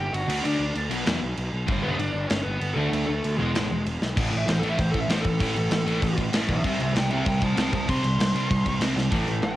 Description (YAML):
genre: punk rock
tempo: 194 BPM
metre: 4/4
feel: straight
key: unclear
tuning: A4 = 441 Hz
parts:
  - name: high-gain lead guitar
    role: melody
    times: 0.0-9.6 s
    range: G#3 to C6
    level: -29 LUFS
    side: equal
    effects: distortion, cassette tape
  - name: fuzz picked electric bass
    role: bass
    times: 0.0-9.6 s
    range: E1 to E2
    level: -29 LUFS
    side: equal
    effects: overdrive
  - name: big rock drum kit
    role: drums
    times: 0.1-9.5 s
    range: crash cymbal, kick drum, snare drum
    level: -28 LUFS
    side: equal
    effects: none
  - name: sludgy distorted guitar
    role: riff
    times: 0.3-9.6 s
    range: E2 to D4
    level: -26 LUFS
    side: equal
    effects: overdrive, cassette tape
  - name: distorted electric guitar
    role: riff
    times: 9.1-9.6 s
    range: A2 to A3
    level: -30 LUFS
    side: equal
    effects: overdrive, cassette tape
room: light reverb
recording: home recording on cassette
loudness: -22 LUFS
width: side -14 dB against mid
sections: 0.0-4.2 A section; 4.2-9.6 B section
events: half time 0.0-4.2; drum fill 4.0, 9.0; lead electric guitar solo 4.2-9.6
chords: 0.3 D; 0.9 B5; 1.7 G; 2.8 D5; 3.4 E; 4.2 A5; 6.6 C